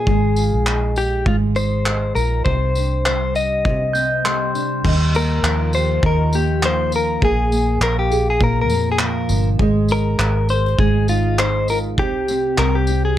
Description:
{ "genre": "acoustic pop", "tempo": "101 BPM", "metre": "4/4", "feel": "swing 55% on 16ths", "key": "Eb major", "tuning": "A4 = 440 Hz", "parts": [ { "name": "direct-recorded clean electric guitar", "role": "melody", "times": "0.0-13.2 s", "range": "F4 to Eb5", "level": "-21 LUFS", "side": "left 3 dB", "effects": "plate reverb" }, { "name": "nylon-string guitar", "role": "accompaniment", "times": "0.0-13.2 s", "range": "Bb2 to C5", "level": "-22 LUFS", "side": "right 1 dB", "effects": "double-tracked left and right" }, { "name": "vintage muted fingered electric bass", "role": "bass", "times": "0.1-13.2 s", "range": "G1 to F2", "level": "-20 LUFS", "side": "equal", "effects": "none" }, { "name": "loose indie drum kit", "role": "drums", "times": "0.1-13.0 s", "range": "crash cymbal, handclaps, kick drum, tambourine", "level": "-23 LUFS", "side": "equal", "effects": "none" }, { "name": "glockenspiel with rubber mallets", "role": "second line", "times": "3.9-4.8 s", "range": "C6 to G6", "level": "-24 LUFS", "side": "equal", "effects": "plate reverb" } ], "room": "moderate small room reverb, RT60 0.5 s", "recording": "none", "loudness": "-16 LUFS", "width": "side -12 dB against mid", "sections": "0.0-4.8 A section; 4.8-13.2 B section", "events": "none", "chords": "0.1 Fm7/Ab; 2.5 Cmadd9; 4.8 Ebadd9; 7.2 Bb7; 9.6 Fm7/Ab; 12.0 C5" }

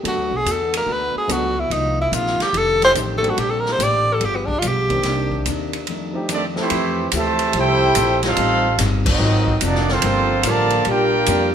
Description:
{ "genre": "jazz, big band swing", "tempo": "144 BPM", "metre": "4/4", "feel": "swing 66% on 8ths", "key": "F major from 6.7 s", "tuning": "A4 = 441 Hz", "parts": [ { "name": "hollow-body jazz guitar", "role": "accompaniment", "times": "0.0-11.5 s", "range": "F2 to A4", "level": "-28 LUFS", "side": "left 5 dB", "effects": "none" }, { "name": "warm baby grand piano", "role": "accompaniment", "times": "0.0-6.7 s", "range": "Eb3 to A4", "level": "-28 LUFS", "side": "equal", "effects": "none" }, { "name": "warm trombone section", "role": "sustained chords", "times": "0.0-6.7 s", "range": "F2 to A4", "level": "-31 LUFS", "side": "left 1 dB", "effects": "none" }, { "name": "upright bass", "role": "bass", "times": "0.0-11.5 s", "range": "F1 to F#2", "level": "-24 LUFS", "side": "equal", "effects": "none" }, { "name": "breathy tenor saxophone", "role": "melody", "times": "0.1-5.5 s", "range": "B3 to D5", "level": "-19 LUFS", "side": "equal", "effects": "none" }, { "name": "swinging big-band drum kit", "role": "drums", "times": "0.1-11.4 s", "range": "crash cymbal, hi-hat, kick drum, ride cymbal, snare drum", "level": "-25 LUFS", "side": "right 1 dB", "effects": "none" }, { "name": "warm trumpet section", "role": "melody", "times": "6.3-11.5 s", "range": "A3 to A5", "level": "-20 LUFS", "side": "right 1 dB", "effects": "none" }, { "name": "bright trombone section", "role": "second line", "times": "6.3-11.5 s", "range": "C3 to G4", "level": "-21 LUFS", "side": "right 2 dB", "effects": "none" } ], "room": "moderate large studio reverb, RT60 1.3 s", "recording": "minimal, uncompressed stereo recording", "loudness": "-16 LUFS", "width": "side -8 dB against mid", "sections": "0.0-6.7 A section; 6.7-11.5 B section", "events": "tenor saxophone solo 0.0-6.7; band accent 9.0", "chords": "0.0 D6; 1.7 Cm11; 2.5 F13; 3.4 Bbmaj13; 4.2 G7b9; 5.0 Cm9; 5.9 F13; 6.7 Fmaj9; 8.4 Am7b5; 9.2 Ab13; 10.0 Gm9" }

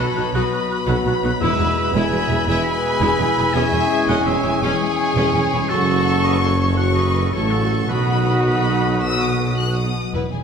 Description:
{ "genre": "cinematic, heroic adventure film score", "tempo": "111 BPM (dotted quarters)", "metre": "12/8", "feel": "straight", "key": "unclear", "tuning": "A4 = 437 Hz", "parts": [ { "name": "warm symphonic violin section", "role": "melody", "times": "0.0-10.4 s", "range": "B4 to F#6", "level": "-26 LUFS", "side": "left 3 dB", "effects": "none" }, { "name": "clear oboe", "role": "second line", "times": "0.0-9.5 s", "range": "A4 to B5", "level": "-26 LUFS", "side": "right 1 dB", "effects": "none" }, { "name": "rich studio violin section", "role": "second line", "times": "0.0-10.4 s", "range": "B3 to G#5", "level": "-28 LUFS", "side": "left 3 dB", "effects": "none" }, { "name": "silver concert flute", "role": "second line", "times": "0.0-9.9 s", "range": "C#6 to F#6", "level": "-30 LUFS", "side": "left 2 dB", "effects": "none" }, { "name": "warm clarinet", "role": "second line", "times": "0.0-9.9 s", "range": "F#4 to G#4", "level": "-30 LUFS", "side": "left 2 dB", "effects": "none" }, { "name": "rich studio viola section", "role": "accompaniment", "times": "0.0-10.4 s", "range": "F#3 to G#4", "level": "-28 LUFS", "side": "equal", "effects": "none" }, { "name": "dark French horn section", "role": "sustained chords", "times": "0.0-10.0 s", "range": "B3 to F#4", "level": "-28 LUFS", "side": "left 4 dB", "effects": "none" }, { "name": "dark trombone section", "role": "sustained chords", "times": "0.0-9.9 s", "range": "B2 to G#3", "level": "-29 LUFS", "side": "right 3 dB", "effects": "none" }, { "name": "concert harp", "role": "arpeggios", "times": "0.0-10.4 s", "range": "E2 to A5", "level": "-30 LUFS", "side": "left 8 dB", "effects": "none" }, { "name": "dark trumpet section", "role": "stabs", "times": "0.0-9.9 s", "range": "F#4 to B4", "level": "-26 LUFS", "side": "right 1 dB", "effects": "none" }, { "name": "warm symphonic cello section", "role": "bass", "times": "0.0-10.4 s", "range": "E2 to B2", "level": "-25 LUFS", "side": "right 2 dB", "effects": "none" }, { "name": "warm symphonic double bass section", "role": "bass", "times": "0.0-10.4 s", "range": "E1 to B1", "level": "-26 LUFS", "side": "right 2 dB", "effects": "none" }, { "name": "warm tuba", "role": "bass", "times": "0.0-9.9 s", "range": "E1 to B1", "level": "-26 LUFS", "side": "right 4 dB", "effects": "none" }, { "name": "timpani", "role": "percussion", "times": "1.4-1.9, 10.2-10.4 s", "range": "E2", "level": "-32 LUFS", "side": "left 1 dB", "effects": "none" } ], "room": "wet scoring stage reverb, RT60 1.9 s", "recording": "none", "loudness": "-16 LUFS", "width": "side -6 dB against mid", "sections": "0.0-10.1 A section", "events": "none", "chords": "0.0 B; 1.4 E; 3.6 C#m/E; 5.7 F#m; 7.9 B" }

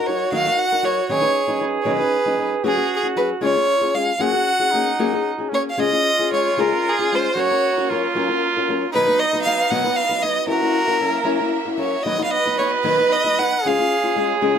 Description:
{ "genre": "mexican folk, mariachi", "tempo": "77 BPM (dotted quarters)", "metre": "6/8", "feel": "straight", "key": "F# major, Db major from 5.8 s", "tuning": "A4 = 439 Hz", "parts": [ { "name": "rich violin", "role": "melody", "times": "0.0-14.3 s", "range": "Ab4 to Gb5", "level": "-20 LUFS", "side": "equal", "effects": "none" }, { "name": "mellow trumpet", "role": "second line", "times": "0.0-14.6 s", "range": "C#4 to Cb5", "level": "-24 LUFS", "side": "right 5 dB", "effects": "none" }, { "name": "flamenco guitar", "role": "accompaniment", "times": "0.0-14.6 s", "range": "B2 to B4", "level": "-23 LUFS", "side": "left 4 dB", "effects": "none" }, { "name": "warm studio violin section", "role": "sustained chords", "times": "5.8-14.6 s", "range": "Ab3 to Fb5", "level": "-30 LUFS", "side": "right 1 dB", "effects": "none" } ], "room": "light reverb", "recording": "none", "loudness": "-17 LUFS", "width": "side -8 dB against mid", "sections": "0.0-5.8 A section; 5.8-14.6 B section", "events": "none", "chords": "0.0 D#m; 1.1 Badd9; 2.7 C#sus4; 3.4 C#; 4.2 F#add9; 5.8 Db; 7.4 Gb; 8.9 Cb; 10.5 Gb7; 12.1 Cb; 13.6 Db" }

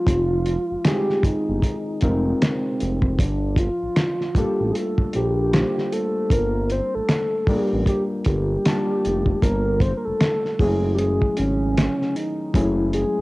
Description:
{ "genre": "R&B, neo-soul", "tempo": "77 BPM", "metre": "4/4", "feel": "swing 60% on 16ths", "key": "unclear", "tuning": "A4 = 440 Hz", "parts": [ { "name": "soft octave-layered synth lead", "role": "melody", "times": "0.0-13.2 s", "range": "C4 to C5", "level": "-23 LUFS", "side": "equal", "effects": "chorus, cassette tape" }, { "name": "overdriven reed electric piano", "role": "accompaniment", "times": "0.0-13.2 s", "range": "Gb3 to A5", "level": "-26 LUFS", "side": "left 2 dB", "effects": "cassette tape" }, { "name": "smooth synth bass", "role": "bass", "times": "0.1-13.2 s", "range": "F1 to Bb1", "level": "-24 LUFS", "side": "equal", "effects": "none" }, { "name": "cloth-damped thuddy drum kit", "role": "drums", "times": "0.1-13.1 s", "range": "finger snaps, hi-hat, kick drum, snare drum", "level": "-22 LUFS", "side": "equal", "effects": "cassette tape" } ], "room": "light reverb, small room ambience", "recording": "home recording on cassette", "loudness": "-19 LUFS", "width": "side -21 dB against mid", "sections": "0.0-13.2 A section", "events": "none", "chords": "0.0 Fm9; 3.2 Gm9; 10.6 Gbm9" }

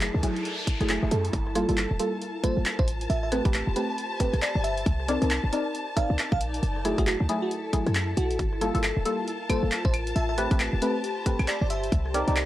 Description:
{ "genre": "UK garage, two-step garage", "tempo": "136 BPM", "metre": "4/4", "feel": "swing 61% on 16ths", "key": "unclear", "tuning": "A4 = 439 Hz", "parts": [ { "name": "warm symphonic violin section", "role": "sustained chords", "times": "0.0-12.5 s", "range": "A5", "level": "-36 LUFS", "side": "left 2 dB", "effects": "sidechain pumping" }, { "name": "short 808-style bass", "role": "bass", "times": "0.0-12.5 s", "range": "D1 to F#2", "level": "-27 LUFS", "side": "equal", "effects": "none" }, { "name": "punchy analog drum machine", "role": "drums", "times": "0.0-12.5 s", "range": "claves, handclaps, hi-hat, rim click", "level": "-31 LUFS", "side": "equal", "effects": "none" }, { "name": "noise sweep", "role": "sound effects", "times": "0.1-1.3 s", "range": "none", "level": "-36 LUFS", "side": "equal", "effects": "none" }, { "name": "granular cloud pad", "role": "texture", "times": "0.0-12.5 s", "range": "Eb4 to B5", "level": "-37 LUFS", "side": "left 1 dB", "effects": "built-in reverb, sidechain pumping" }, { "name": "deep mellow chord stab", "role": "stabs", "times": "0.2-12.4 s", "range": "F#3 to D5", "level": "-28 LUFS", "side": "equal", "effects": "chorus, analog delay" }, { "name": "electronic kick drum", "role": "drums", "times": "0.2-12.0 s", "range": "none", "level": "-26 LUFS", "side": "equal", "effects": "none" }, { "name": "bell-like FM electric piano", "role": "melody", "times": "2.4-12.0 s", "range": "F#4 to F5", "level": "-33 LUFS", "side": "right 2 dB", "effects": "chorus, phaser, analog delay" } ], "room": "little or no reverb", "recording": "dry, gritty hardware recording, transformer saturation, vinyl crackle", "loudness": "-24 LUFS", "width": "side -14 dB against mid", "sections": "0.0-12.5 A section", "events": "filter sweep on synth stab 0.0-12.5; noise sweep 0.1-1.3", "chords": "0.0 F#m9; 1.3 Gm9; 2.9 Am9; 4.9 Cm9; 6.6 F#m9; 8.4 Gm9; 9.9 Am9; 11.9 Cm9" }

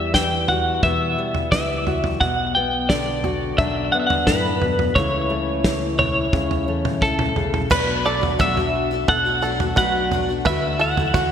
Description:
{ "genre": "indie folk with a building arrangement", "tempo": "87 BPM", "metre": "4/4", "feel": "straight", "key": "unclear", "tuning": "A4 = 438 Hz", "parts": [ { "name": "twelve-string electric guitar", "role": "melody", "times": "0.0-11.3 s", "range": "A4 to G5", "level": "-21 LUFS", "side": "equal", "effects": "tremolo, ping-pong delay" }, { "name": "fingerpicked steel-string acoustic guitar", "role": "accompaniment", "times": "0.0-7.7 s", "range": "E2 to F#4", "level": "-26 LUFS", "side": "left 4 dB", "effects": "none" }, { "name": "fingered electric bass", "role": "bass", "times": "0.0-11.3 s", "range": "B1 to F#2", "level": "-28 LUFS", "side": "equal", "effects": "none" }, { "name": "loose indie drum kit", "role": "drums", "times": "0.1-11.3 s", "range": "crash cymbal, kick drum, snare drum, toms", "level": "-24 LUFS", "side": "right 1 dB", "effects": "none" }, { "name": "picked twelve-string acoustic guitar", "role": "accompaniment", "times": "7.7-11.3 s", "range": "B2 to F#4", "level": "-25 LUFS", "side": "left 5 dB", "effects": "lush chorus" }, { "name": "bluegrass banjo", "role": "arpeggios", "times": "7.7-11.3 s", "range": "F#4 to B4", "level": "-27 LUFS", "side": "right 6 dB", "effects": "none" } ], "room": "wet lush hall reverb, RT60 2.5 s", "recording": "bright 1980s-style digital production", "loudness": "-18 LUFS", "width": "side -8 dB against mid", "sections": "0.0-7.7 A section; 7.7-11.3 B section", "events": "none", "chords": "0.0 Emadd9; 2.2 Bm; 5.0 A/C#; 7.7 Bm7; 10.5 Dadd9" }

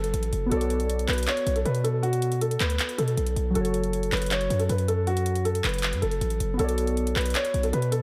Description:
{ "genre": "hip hop, trap", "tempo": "158 BPM", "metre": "4/4", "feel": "half-time", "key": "unclear", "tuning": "A4 = 440 Hz", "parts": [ { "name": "dark grand piano", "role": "melody", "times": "0.0-8.0 s", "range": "F#4 to C#5", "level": "-30 LUFS", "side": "equal", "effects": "low-pass filter, digital delay" }, { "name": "warbly lo-fi synth keys", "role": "accompaniment", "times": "0.0-8.0 s", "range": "F#3 to D5", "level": "-35 LUFS", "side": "equal", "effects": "chorus, low-pass filter" }, { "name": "hard-hitting 808-style bass", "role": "bass", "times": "0.0-8.0 s", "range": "F#1 to B2", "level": "-29 LUFS", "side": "equal", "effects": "none" }, { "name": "trap drum kit", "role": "drums", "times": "0.0-8.0 s", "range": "handclaps, hi-hat", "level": "-33 LUFS", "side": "equal", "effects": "none" } ], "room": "light reverb", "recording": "none", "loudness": "-26 LUFS", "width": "mono", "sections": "0.0-8.0 A section", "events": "none", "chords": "0.0 F#m; 0.5 Bmadd9; 3.6 F#m; 6.6 Bmadd9" }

